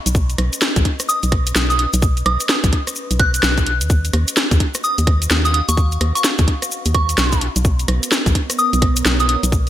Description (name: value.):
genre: UK garage, two-step garage.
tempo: 128 BPM.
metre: 4/4.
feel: swing 62% on 16ths.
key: Eb minor.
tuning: A4 = 440 Hz.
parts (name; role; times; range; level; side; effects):
warbly tape-like pad; texture; 0.0-9.7 s; Cb4 to F5; -31 LUFS; right 4 dB; chorus, built-in reverb, sidechain pumping.
organ-like FM bass; bass; 0.1-9.7 s; B1 to D#2; -18 LUFS; equal; none.
electronic kick drum; drums; 0.1-9.6 s; none; -17 LUFS; equal; overdrive.
garage drum kit; drums; 0.1-9.7 s; hi-hat, rim click, snare drum; -20 LUFS; equal; overdrive, gated reverb.
maracas; percussion; 0.1-9.7 s; none; -26 LUFS; left 3 dB; none.
soft synth bell; melody; 1.1-9.4 s; Db6 to F#6; -22 LUFS; right 1 dB; chorus, phaser, ping-pong delay.
room: light reverb.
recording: bright 1980s-style digital production.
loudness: -14 LUFS.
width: side -12 dB against mid.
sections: 0.0-9.7 A section.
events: fade-in on ambient pad 0.0-9.7.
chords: 0.0 Badd9; 7.4 Ebm9.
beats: | 0.15 0.62 1.09 1.55 | 2.02 2.49 2.96 3.43 | 3.90 4.37 4.84 5.30 | 5.77 6.24 6.71 7.18 | 7.65 8.12 8.59 9.05 | 9.52.